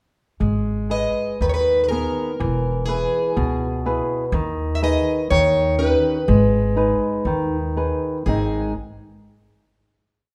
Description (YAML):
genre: fado-style ballad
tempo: 62 BPM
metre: 2/4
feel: rubato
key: G# minor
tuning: A4 = 442 Hz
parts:
  - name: flamenco guitar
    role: accompaniment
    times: 0.4-8.7 s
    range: G#2 to B4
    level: -25 LUFS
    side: equal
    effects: none
  - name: upright bass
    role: bass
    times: 0.4-8.7 s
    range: E1 to D#2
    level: -25 LUFS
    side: equal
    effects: none
  - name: picked plugged-in twelve-string acoustic guitar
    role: melody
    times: 0.9-8.7 s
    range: G#4 to E5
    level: -24 LUFS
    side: equal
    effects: none
room: moderate recital hall reverb, RT60 1.4 s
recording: none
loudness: -21 LUFS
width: mono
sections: 0.4-8.3 A section; 8.3-10.2 final chord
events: none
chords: 0.4 G#madd9; 2.4 E; 4.3 G#m/D#; 5.3 D#7; 6.3 G#m; 8.3 G#